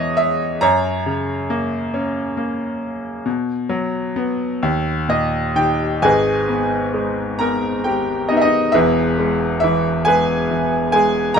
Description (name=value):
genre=classical, lyrical solo piano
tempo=42-47 BPM (dotted quarters)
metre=6/8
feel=rubato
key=G# harmonic minor from 6.0 s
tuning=A4 = 440 Hz
part: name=bright concert grand piano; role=solo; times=0.0-11.4 s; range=E1 to A#5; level=-16 LUFS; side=equal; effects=none
room=light reverb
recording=minimal, uncompressed stereo recording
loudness=-16 LUFS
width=side -6 dB against mid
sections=0.0-6.0 A section; 6.0-11.4 B section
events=grand piano fill 4.6-6.0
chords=0.0 E; 0.6 F#; 3.3 B5; 4.6 D#7; 6.0 G#madd9; 8.8 E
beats=| 0.61 1.93 | 3.25 4.63 | 6.04 7.41 | 8.75 10.08 | 11.37